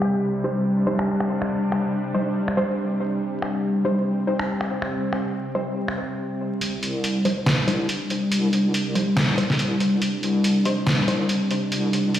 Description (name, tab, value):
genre	deep dubstep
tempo	141 BPM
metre	4/4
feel	swing 56% on 16ths, half-time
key	C minor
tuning	A4 = 444 Hz
part	bowed-like drone	sustained chords	0.0-12.2 s	C3 to D4	-23 LUFS	equal	built-in reverb
part	trip hop sampler-style drum kit	drums	0.0-12.2 s	finger snaps, hi-hat, snare drum	-25 LUFS	equal	low-pass filter on snare, low-pass filter on hats
part	filtered dub chord stab	stabs	0.4-11.2 s	G3 to C5	-28 LUFS	left 1 dB	chorus, dub echo
part	deep soft wobble bass	bass	6.6-12.1 s	C2	-28 LUFS	left 1 dB	chorus, high-pass filter
room	moderate lush hall reverb, RT60 1.9 s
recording	played on a big sound system in a bare room, stone room reverb, vinyl crackle, low-pass filter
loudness	-20 LUFS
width	side -11 dB against mid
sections	0.0-6.6 A section; 6.6-12.2 B section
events	filter sweep 0.0-6.6; build-up 6.6-12.2; filter sweep on synth stab 6.6-12.2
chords	0.0 Cm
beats	0.23 0.66 1.08 | 1.51 1.93 2.36 2.78 | 3.21 3.63 4.06 4.49 | 4.91 5.34 5.76 6.19 | 6.61 7.04 7.46 7.89 | 8.31 8.74 9.17 9.59 | 10.02 10.44 10.87 11.29 | 11.72 12.14